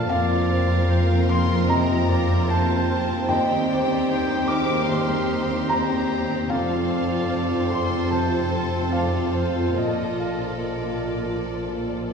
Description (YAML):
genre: cinematic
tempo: 74 BPM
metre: 4/4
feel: uneven beats, rubato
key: unclear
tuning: A4 = 439 Hz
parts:
  - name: rich symphonic violin section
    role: melody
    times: 0.0-12.1 s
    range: D5 to D6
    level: -33 LUFS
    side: left 2 dB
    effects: none
  - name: warm clarinet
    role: second line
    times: 0.0-12.1 s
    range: A4 to Eb5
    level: -33 LUFS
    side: right 2 dB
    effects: none
  - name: warm symphonic violin section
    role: second line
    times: 0.0-12.1 s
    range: G4 to D5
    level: -31 LUFS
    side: equal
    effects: none
  - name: dark symphonic viola section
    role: accompaniment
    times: 0.0-12.1 s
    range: Bb3 to F4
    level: -30 LUFS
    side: right 3 dB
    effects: none
  - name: felt-muted upright piano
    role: accompaniment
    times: 0.0-12.1 s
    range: Eb2 to D6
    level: -26 LUFS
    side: left 1 dB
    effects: none
  - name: mellow French horn section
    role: sustained chords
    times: 0.0-12.1 s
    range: F3 to F4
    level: -28 LUFS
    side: left 2 dB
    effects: none
  - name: dark symphonic cello section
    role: bass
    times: 0.0-12.1 s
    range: Eb2 to Bb2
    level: -29 LUFS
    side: right 2 dB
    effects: none
  - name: warm symphonic double bass section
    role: bass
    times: 0.0-12.1 s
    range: F1 to Eb2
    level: -27 LUFS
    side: equal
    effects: none
room: wet scoring stage reverb, RT60 1.7 s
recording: heard from further back in the room, small room ambience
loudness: -20 LUFS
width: side -6 dB against mid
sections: 0.0-12.1 A section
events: none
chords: 0.1 Fsus4; 3.3 Cm/Eb; 6.5 F; 9.8 Bbmaj7